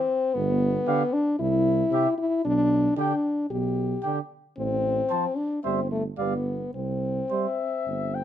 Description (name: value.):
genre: classical, brass quintet.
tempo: 113 BPM.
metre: 4/4.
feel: uneven beats, rubato.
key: C major.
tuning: A4 = 440 Hz.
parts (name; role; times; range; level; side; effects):
mellow French horn; accompaniment; 0.0-8.2 s; A3 to G4; -25 LUFS; left 2 dB; none.
mellow tuba; bass; 0.3-8.2 s; G1 to C2; -28 LUFS; right 5 dB; none.
mellow cornet; melody; 0.9-8.2 s; E5 to A5; -31 LUFS; left 7 dB; none.
dark trumpet; second line; 0.9-7.5 s; G4 to D5; -32 LUFS; right 11 dB; none.
warm trombone; accompaniment; 0.9-7.5 s; C3 to G3; -31 LUFS; right 6 dB; none.
room: light reverb.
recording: minimal, uncompressed stereo recording.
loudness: -23 LUFS.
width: side -10 dB against mid.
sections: 0.0-8.2 A section.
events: none.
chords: 0.3 G; 1.4 C; 2.4 G/B; 4.6 F/A; 5.6 C/G; 6.2 G7; 6.7 C.